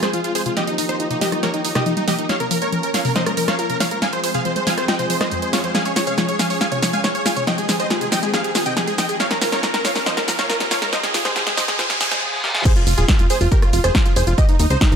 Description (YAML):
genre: uplifting trance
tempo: 139 BPM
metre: 4/4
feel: straight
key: F minor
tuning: A4 = 438 Hz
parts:
  - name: dense compressed supersaw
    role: melody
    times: 0.0-15.0 s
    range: Eb4 to Ab5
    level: -22 LUFS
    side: equal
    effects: vintage 12-bit sampler grit, sidechain pumping, digital delay
  - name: filtered supersaw swell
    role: sustained chords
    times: 0.0-12.2 s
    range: Eb3 to Bb4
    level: -27 LUFS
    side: right 1 dB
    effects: sidechain pumping
  - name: wide unison pluck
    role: arpeggios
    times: 0.0-12.1 s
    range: F2 to F4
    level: -27 LUFS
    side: left 3 dB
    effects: sidechain pumping, ping-pong delay
  - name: techno drum kit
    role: drums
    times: 0.0-15.0 s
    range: crash cymbal, hi-hat, rim click, shaker, snare drum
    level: -22 LUFS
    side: equal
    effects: sidechain pumping on hats, sidechain pumping on perc, sidechain pumping on cymbals
  - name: riser, reverse cymbal and impact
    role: sound effects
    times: 8.2-14.4 s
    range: none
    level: -27 LUFS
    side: right 1 dB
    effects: none
  - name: plucky unison lead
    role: second line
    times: 12.7-15.0 s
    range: Eb4 to Eb5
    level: -25 LUFS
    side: right 1 dB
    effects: sidechain pumping, ping-pong delay
  - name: electronic kick drum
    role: drums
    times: 12.7-14.9 s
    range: none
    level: -16 LUFS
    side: equal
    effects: none
  - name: plucky analog bass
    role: bass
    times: 12.9-15.0 s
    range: Eb1 to Eb2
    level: -18 LUFS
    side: equal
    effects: sidechain pumping
room: moderate lush hall reverb, RT60 1.5 s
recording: high-pass filter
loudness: -16 LUFS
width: side -7 dB against mid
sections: 0.0-12.7 A section; 12.7-15.0 B section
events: build-up 0.0-12.7; drum fill 0.0-12.2, 12.4; filter sweep on synth pluck 0.0-12.7; filter sweep 0.0-12.7; reverse cymbal 11.8-12.7; drop 12.7-15.0; impact 12.7-14.4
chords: 0.0 Fm; 0.6 Ebadd9; 2.3 Bbm; 4.0 Fm; 5.7 Db; 7.5 Abmaj7; 9.2 Bbm; 10.9 Abmaj7; 12.7 Fm; 14.4 N.C.